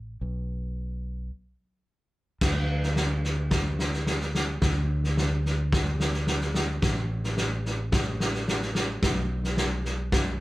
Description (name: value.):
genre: post-rock.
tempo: 109 BPM.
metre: 4/4.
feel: straight.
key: unclear.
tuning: A4 = 440 Hz.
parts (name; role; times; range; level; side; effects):
fingered electric bass; bass; 0.0-10.4 s; A1 to D2; -28 LUFS; equal; none.
loose indie drum kit; drums; 2.4-10.3 s; crash cymbal, kick drum, snare drum; -26 LUFS; equal; none.
room: light reverb.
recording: band playing live in one room.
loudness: -25 LUFS.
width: side -17 dB against mid.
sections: 0.0-2.4 A section; 2.4-10.4 B section.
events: break 1.3-2.4.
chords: none.